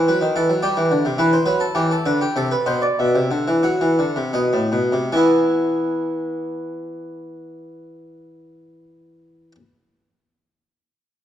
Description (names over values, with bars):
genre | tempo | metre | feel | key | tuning
classical, baroque-style two-part invention for harpsichord | 72-109 BPM | 3/4 | straight | unclear | A4 = 438 Hz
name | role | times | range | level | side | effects
harpsichord | solo | 0.0-9.6 s | A2 to G#5 | -18 LUFS | equal | none
room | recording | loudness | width
wet recital hall reverb, RT60 1.8 s | worn, warbling old tape, cassette tape, warbly pitch drift | -17 LUFS | side -10 dB against mid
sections
0.0-5.1 A section; 5.1-10.1 B section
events
slowing down 0.3-5.1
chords
0.0 B7; 0.6 Em; 2.3 Am/C; 3.0 Bsus4 (rootless); 4.4 B7; 5.1 E